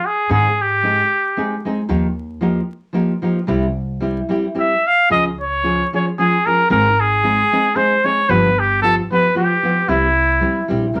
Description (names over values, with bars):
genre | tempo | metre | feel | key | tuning
mexican folk, mariachi | 113 BPM | 3/4 | swing 54% on 8ths | unclear | A4 = 442 Hz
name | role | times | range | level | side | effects
clear trumpet | melody | 0.0-1.7, 4.6-11.0 s | E4 to F5 | -18 LUFS | equal | none
nylon-string guitar | accompaniment | 0.3-11.0 s | G2 to Ab4 | -22 LUFS | equal | none
upright bass | bass | 0.3-11.0 s | G1 to Ab2 | -25 LUFS | equal | none
room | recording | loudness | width
moderate studio ambience, RT60 0.5 s | vinyl crackle | -17 LUFS | mono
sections
0.0-11.0 A section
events
none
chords
0.3 Ab; 1.9 Ebadd9; 3.5 C; 5.1 Db; 6.7 Ab; 8.3 G7; 9.9 C